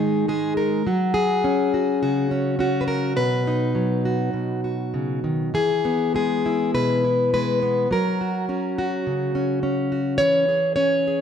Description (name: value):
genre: folk, solo fingerstyle acoustic guitar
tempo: 104 BPM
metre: 4/4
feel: rubato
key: unclear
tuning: A4 = 440 Hz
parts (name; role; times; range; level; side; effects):
- fingerpicked plugged-in steel-string acoustic guitar; solo; 0.0-11.2 s; G#2 to C#5; -20 LUFS; left 1 dB; none
room: moderate recital hall reverb, RT60 1.4 s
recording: none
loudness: -20 LUFS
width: side -8 dB against mid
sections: 0.0-5.5 A section; 5.5-11.2 B section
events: none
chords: 0.0 G#sus2; 0.8 F#5; 3.2 B; 5.5 E; 7.9 F#; 10.2 C#m/E